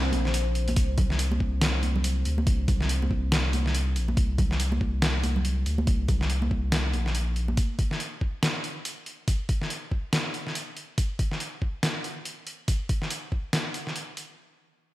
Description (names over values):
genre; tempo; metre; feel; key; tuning
deep dubstep; 141 BPM; 4/4; swing 59% on 16ths, half-time; unclear; A4 = 443 Hz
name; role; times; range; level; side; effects
deep dark ambient pad; sustained chords; 0.0-7.6 s; C4 to C5; -37 LUFS; equal; chorus, built-in reverb
saturated sub bass; bass; 0.0-7.6 s; Bb1 to D2; -26 LUFS; equal; tube saturation
trip hop sampler-style drum kit; drums; 0.1-14.3 s; hi-hat, snare drum; -29 LUFS; equal; none
congas; percussion; 0.1-7.6 s; none; -34 LUFS; right 2 dB; dub echo
electronic kick drum; drums; 0.8-13.4 s; none; -26 LUFS; equal; overdrive
room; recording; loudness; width
little or no reverb; none; -24 LUFS; side -16 dB against mid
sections
0.8-14.4 A section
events
kick drops out 0.3-0.8; filter sweep on ambient pad 0.8-7.6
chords
none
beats
0.34 | 0.77 1.19 1.62 2.04 | 2.47 2.89 3.32 3.74 | 4.17 4.59 5.02 5.45 | 5.87 6.30 6.72 7.15 | 7.57 8.00 8.43 8.85 | 9.28 9.70 10.13 10.55 | 10.98 11.40 11.83 12.26 | 12.68 13.11 13.53 13.96